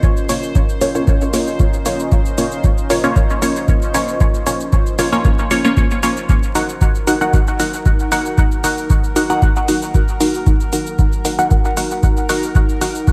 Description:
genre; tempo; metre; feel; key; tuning
dub techno; 115 BPM; 4/4; straight; Bb minor; A4 = 440 Hz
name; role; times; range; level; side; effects
deep dark ambient pad; sustained chords; 0.0-13.1 s; Db4 to Gb5; -29 LUFS; equal; chorus, built-in reverb, sidechain pumping
electronic cabasa and hi-hat; drums; 0.0-13.1 s; none; -28 LUFS; equal; none
electronic kick drum; drums; 0.0-13.1 s; none; -17 LUFS; equal; none
bubbling stepped-filter texture; texture; 0.0-13.1 s; Bb4 to C5; -34 LUFS; equal; chorus, built-in reverb, sidechain pumping
filtered dub chord stab; stabs; 0.3-13.0 s; Bb3 to Gb5; -21 LUFS; equal; phaser, cassette tape, sidechain pumping, dub echo
room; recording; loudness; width
light reverb, digital ambience; vinyl crackle; -16 LUFS; mono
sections
0.0-13.1 A section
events
none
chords
0.0 Bbm; 6.3 Ebm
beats
| 0.03 0.55 1.07 1.60 | 2.12 2.64 3.16 3.68 | 4.21 4.73 5.25 5.77 | 6.29 6.81 7.33 7.86 | 8.38 8.90 9.42 9.94 | 10.47 10.99 11.51 12.03 | 12.55 13.07

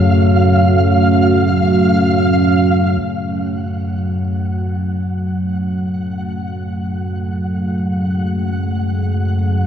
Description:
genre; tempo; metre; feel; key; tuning
dark ambient drone; free time; none; none; F# harmonic minor; A4 = 440 Hz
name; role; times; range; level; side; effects
deep dark ambient pad; sustained chords; 0.0-9.7 s; F#3 to G#5; -18 LUFS; right 1 dB; chorus, built-in reverb, shimmer reverb
dark detuned synth bell; arpeggios; 0.0-3.0 s; none; barely audible; none; none
analog drone; drone; 0.0-9.7 s; F#2 to F#3; -17 LUFS; equal; chorus
flickering grainy texture; texture; 0.0-9.7 s; E#5 to F#5; -23 LUFS; right 1 dB; built-in reverb, lush chorus, shimmer reverb
room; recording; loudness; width
wet lush hall reverb, RT60 3.1 s; dreamy mix soaked in reverb; -14 LUFS; side -8 dB against mid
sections
0.0-3.0 A section; 3.0-9.7 B section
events
filter sweep on synth drone 3.0-9.7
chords
0.0 F#madd9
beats
free time

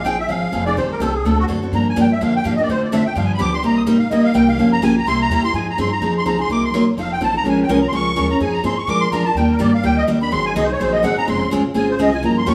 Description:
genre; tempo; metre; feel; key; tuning
acoustic string swing (jazz manouche); 251 BPM; 4/4; swing 55% on 8ths; C minor, F minor from 5.5 s; A4 = 440 Hz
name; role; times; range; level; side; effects
musette accordion; melody; 0.0-12.5 s; F#4 to Eb6; -23 LUFS; equal; none
picked steel-string acoustic guitar; accompaniment; 0.0-12.5 s; C3 to Bb4; -20 LUFS; equal; none
upright bass; bass; 0.0-12.5 s; F1 to Bb2; -27 LUFS; equal; none
room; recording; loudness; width
wet stone room reverb, RT60 1.1 s; band playing live in one room, small room reverb; -18 LUFS; mono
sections
0.0-5.5 A section; 5.5-12.5 A section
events
accordion solo 0.0-12.5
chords
0.0 Fm7; 0.8 Am7b5; 1.2 D7; 1.7 Gm7; 2.7 Dm7; 3.2 G7; 3.6 Cm7; 4.6 Gm7b5; 5.1 C7; 5.5 Fm7; 6.5 Cm7b5; 7.0 F7; 7.5 Bbm7; 8.4 Fm7; 8.9 Bb7; 9.4 Ebmaj7; 10.3 Ab7; 11.3 Dbmaj7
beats
0.06 0.29 0.53 | 0.77 1.01 1.25 1.49 | 1.73 1.97 2.20 2.44 | 2.68 2.92 3.16 3.40 | 3.63 3.87 4.11 4.35 | 4.59 4.82 5.06 5.30 | 5.54 5.78 6.02 6.25 | 6.49 6.73 6.97 7.21 | 7.45 7.69 7.93 8.17 | 8.41 8.65 8.88 9.12 | 9.36 9.60 9.84 10.08 | 10.32 10.56 10.80 11.04 | 11.28 11.52 11.76 11.99 | 12.23 12.47

